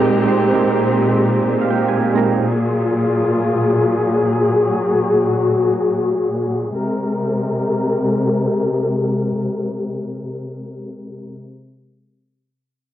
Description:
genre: amapiano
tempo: free time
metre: none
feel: none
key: Ab major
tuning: A4 = 440 Hz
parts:
  - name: soft electric-piano-like synth keys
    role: accompaniment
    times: 0.0-2.4 s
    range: Ab3 to Bb5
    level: -17 LUFS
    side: right 6 dB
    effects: chorus, low-pass filter, plate reverb
  - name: warm studio string section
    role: sustained chords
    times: 0.0-11.3 s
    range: Bb2 to Bb4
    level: -17 LUFS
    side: left 2 dB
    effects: low-pass filter, plate reverb
room: light reverb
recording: home recording on cassette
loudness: -15 LUFS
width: side -12 dB against mid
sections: 0.0-6.7 A section; 6.7-11.1 B section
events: filter sweep 0.0-6.7; synth keys fill 1.3-2.4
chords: 0.0 Abmaj9; 2.4 Gbmaj9; 6.7 Abmaj9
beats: free time

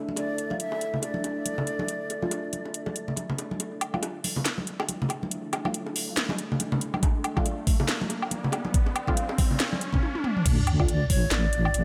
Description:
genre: deep dubstep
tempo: 140 BPM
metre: 4/4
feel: swing 59% on 16ths, half-time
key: D minor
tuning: A4 = 440 Hz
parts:
  - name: deep dark ambient pad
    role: sustained chords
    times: 0.0-11.8 s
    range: D4 to F5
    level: -39 LUFS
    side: equal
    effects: chorus, built-in reverb, vintage 12-bit sampler grit
  - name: congas and bongos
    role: percussion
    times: 0.1-10.0 s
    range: none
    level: -34 LUFS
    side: equal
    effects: dub echo
  - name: breathy bright low ney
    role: melody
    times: 0.2-3.1, 10.9-11.8 s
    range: C#5 to E5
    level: -36 LUFS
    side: equal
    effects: dub echo
  - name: garage drum kit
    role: drums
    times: 0.2-11.8 s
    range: crash cymbal, handclaps, hi-hat, snare drum, toms, woodblock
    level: -32 LUFS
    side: equal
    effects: none
  - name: filtered dub chord stab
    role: stabs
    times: 0.5-10.9 s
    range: A3 to F4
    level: -40 LUFS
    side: equal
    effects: phaser, lush chorus, dub echo
  - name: riser and sub drop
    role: sound effects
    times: 5.0-11.8 s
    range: none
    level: -37 LUFS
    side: equal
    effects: none
  - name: electronic kick drum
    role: drums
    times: 7.0-11.2 s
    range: none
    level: -27 LUFS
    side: equal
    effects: none
  - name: deep soft wobble bass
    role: bass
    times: 10.5-11.8 s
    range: A1 to D2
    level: -27 LUFS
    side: equal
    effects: chorus, tube saturation
room: light reverb, digital ambience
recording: none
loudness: -27 LUFS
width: mono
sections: 0.0-3.6 A section; 3.6-10.5 B section; 10.5-11.8 C section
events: build-up 3.6-10.5; riser 5.4-10.5; drum fill 10.0-10.5; drop 10.5-11.8; impact 10.5-11.8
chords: 0.0 D5; 10.5 Dm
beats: | 0.17 0.60 1.03 1.46 | 1.89 2.31 2.74 3.17 | 3.60 4.03 4.46 4.88 | 5.31 5.74 6.17 6.60 | 7.03 7.46 7.88 8.31 | 8.74 9.17 9.60 10.03 | 10.46 10.88 11.31 11.74

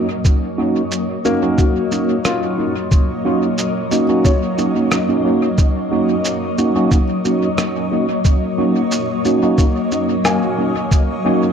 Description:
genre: ambient dub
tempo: 90 BPM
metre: 4/4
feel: straight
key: Eb minor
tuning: A4 = 440 Hz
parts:
  - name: granular cloud pad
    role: sustained chords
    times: 0.0-11.5 s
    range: Gb3 to Eb5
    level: -20 LUFS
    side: left 1 dB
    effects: built-in reverb
  - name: felt-muted upright piano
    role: arpeggios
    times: 0.0-11.5 s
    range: Bb3 to Ab5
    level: -24 LUFS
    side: left 4 dB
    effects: dub echo
  - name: mellow tine electric piano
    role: stabs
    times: 0.0-11.5 s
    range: Bb3 to Gb4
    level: -18 LUFS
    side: right 2 dB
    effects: wide subtle chorus, dub echo
  - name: electronic kick drum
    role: drums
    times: 0.2-11.1 s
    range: none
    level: -14 LUFS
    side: equal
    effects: none
  - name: electronic shaker and rim click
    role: drums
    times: 0.2-11.1 s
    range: none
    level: -24 LUFS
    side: right 1 dB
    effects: dub echo
room: moderate spring reverb, RT60 1.9 s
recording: echo-heavy mix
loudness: -14 LUFS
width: side -7 dB against mid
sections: 0.0-11.5 A section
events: none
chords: 0.0 Ebm7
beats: | 0.25 0.92 1.58 2.25 | 2.92 3.58 4.25 4.92 | 5.58 6.25 6.92 7.58 | 8.25 8.92 9.58 10.25 | 10.92

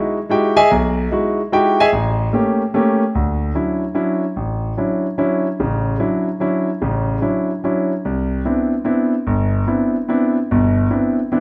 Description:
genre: jazz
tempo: 147 BPM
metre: 3/4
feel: swing 66% on 8ths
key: unclear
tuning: A4 = 440 Hz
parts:
  - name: clear concert grand piano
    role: solo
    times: 0.0-11.4 s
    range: G1 to G#5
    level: -18 LUFS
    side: equal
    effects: none
room: moderate large studio reverb, RT60 1.4 s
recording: none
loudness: -18 LUFS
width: mono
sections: 0.0-3.1 A section; 3.1-11.4 B section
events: none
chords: 0.0 Emaj9; 1.9 A7b9; 3.1 Dmaj9; 8.0 Cmaj9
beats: 0.29 | 0.70 1.10 1.51 | 1.92 2.32 2.73 | 3.14 3.55 3.95 | 4.36 4.77 5.18 | 5.59 5.99 6.40 | 6.81 7.22 7.63 | 8.04 8.44 8.85 | 9.26 9.67 10.08 | 10.48 10.89 11.30

